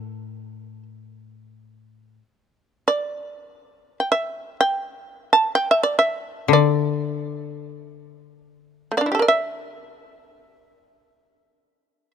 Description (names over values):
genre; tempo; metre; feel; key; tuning
japanese traditional, Japanese chamber music; free time; none; none; A in sen; A4 = 440 Hz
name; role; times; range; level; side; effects
shamisen; melody; 0.0-12.1 s; A3 to A5; -19 LUFS; right 2 dB; none
koto; accompaniment; 0.0-9.9 s; A2 to D3; -22 LUFS; left 10 dB; none
room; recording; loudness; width
light reverb; close, detailed microphones; -19 LUFS; side -7 dB against mid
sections
0.0-2.0 A section; 2.0-12.1 A section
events
none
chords
none